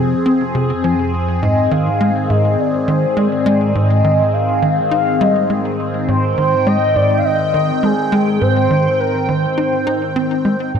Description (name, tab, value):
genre	ambient, sequencer-driven space music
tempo	103 BPM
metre	4/4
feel	straight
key	unclear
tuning	A4 = 439 Hz
part	phased analog pad	sustained chords	0.0-10.8 s	F2 to G5	-18 LUFS	left 1 dB	phaser, chorus
part	tight sequencer bass	riff	0.0-10.8 s	Ab2 to Eb4	-18 LUFS	equal	analog chorus, ping-pong delay
part	expressive portamento lead	melody	1.4-10.5 s	Ab4 to F5	-18 LUFS	equal	wide subtle chorus, ping-pong delay
part	bubbling stepped-filter texture	texture	10.8 s	D4 to D5	-41 LUFS	equal	none
room	wet plate reverb, RT60 2.6 s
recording	none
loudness	-13 LUFS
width	side -7 dB against mid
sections	0.0-10.7 A section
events	none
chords	0.0 Fm; 1.4 Ab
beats	0.26 0.84 | 1.42 2.00 2.59 3.17 | 3.75 4.33 4.92 5.50 | 6.08 6.67 7.25 7.83 | 8.41 8.99 9.58 10.16 | 10.74